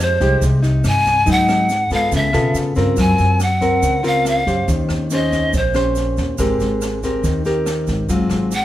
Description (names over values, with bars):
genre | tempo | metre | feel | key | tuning
bossa nova | 141 BPM | 4/4 | straight | unclear | A4 = 445 Hz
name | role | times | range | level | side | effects
breathy bright pan flute | melody | 0.0-5.8, 8.6 s | C5 to Ab5 | -18 LUFS | equal | none
nylon-string guitar | accompaniment | 0.0-8.6 s | Ab2 to C5 | -19 LUFS | left 1 dB | none
upright bass | bass | 0.0-8.6 s | Ab1 to Cb3 | -20 LUFS | equal | none
tube shaker | percussion | 0.0-8.6 s | none | -36 LUFS | right 5 dB | none
open jazz drum kit | drums | 0.2-8.6 s | kick drum, rim click, snare drum | -26 LUFS | equal | none
room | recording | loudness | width
moderate stone room reverb, RT60 1.1 s | band playing live in one room | -15 LUFS | side -13 dB against mid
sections
0.0-3.0 A section; 3.0-8.6 A section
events
pan flute solo 0.0-8.6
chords
0.0 Fm9; 1.3 Abm7; 2.1 Db7alt; 3.0 Gbmaj9#11; 4.7 Eb6; 6.4 Abmaj9; 8.1 Ab6